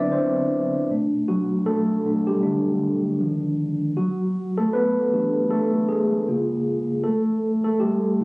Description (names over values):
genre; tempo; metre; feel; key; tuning
R&B; 78 BPM; 4/4; swing 58% on 16ths; unclear; A4 = 440 Hz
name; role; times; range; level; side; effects
mellow tine electric piano; solo; 0.0-8.2 s; B2 to E5; -20 LUFS; equal; medium stereo tremolo
room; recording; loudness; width
moderate studio reverb, RT60 0.7 s; recorded on a phone in the room, studio reverb, compression; -20 LUFS; side -27 dB against mid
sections
0.0-4.0 A section; 4.0-8.2 B section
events
tine electric piano solo 0.0-4.0, 4.0-8.2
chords
0.0 D13; 0.9 Bm7; 3.2 Fm7; 4.0 Em9; 6.3 C#6; 7.0 C5 (rootless)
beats
0.11 | 0.88 1.65 2.42 3.19 | 3.96 4.73 5.50 6.27 | 7.04 7.81